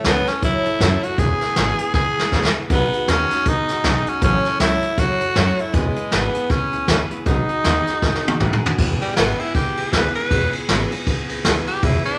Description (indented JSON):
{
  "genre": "rockabilly",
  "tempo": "158 BPM",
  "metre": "4/4",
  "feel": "swing 59% on 8ths",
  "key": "E major",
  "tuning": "A4 = 439 Hz",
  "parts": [
    { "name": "raspy tenor saxophone", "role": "melody", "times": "0.0-12.2 s", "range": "G3 to B4", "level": "-24 LUFS", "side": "equal", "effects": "none" },
    { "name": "picked steel-string acoustic guitar", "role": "accompaniment", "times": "0.0-12.2 s", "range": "C#3 to C#5", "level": "-29 LUFS", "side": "equal", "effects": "none" },
    { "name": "upright bass", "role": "bass", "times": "0.0-12.1 s", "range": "E1 to A2", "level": "-27 LUFS", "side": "equal", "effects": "none" },
    { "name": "jazz brush drum kit", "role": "drums", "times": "0.0-12.1 s", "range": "crash cymbal, hi-hat, kick drum, ride cymbal, snare drum, toms", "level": "-23 LUFS", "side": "equal", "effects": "none" }
  ],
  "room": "moderate large studio reverb, RT60 1.1 s",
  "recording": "none",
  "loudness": "-19 LUFS",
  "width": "mono",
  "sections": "0.0-8.8 A section; 8.8-12.2 B section",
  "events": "drum fill 1.9-2.7, 8.0-8.8; tenor saxophone solo 8.8-12.2",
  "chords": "0.0 A6; 1.2 E6; 2.7 B6; 4.2 A6; 5.7 E6; 7.3 B6; 8.8 E6",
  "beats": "0.04 0.42 0.80 | 1.18 1.56 1.94 2.32 | 2.70 3.08 3.46 3.84 | 4.22 4.60 4.98 5.36 | 5.74 6.12 6.50 6.88 | 7.26 7.64 8.03 8.41 | 8.79 9.17 9.55 9.93 | 10.31 10.69 11.07 11.45 | 11.83"
}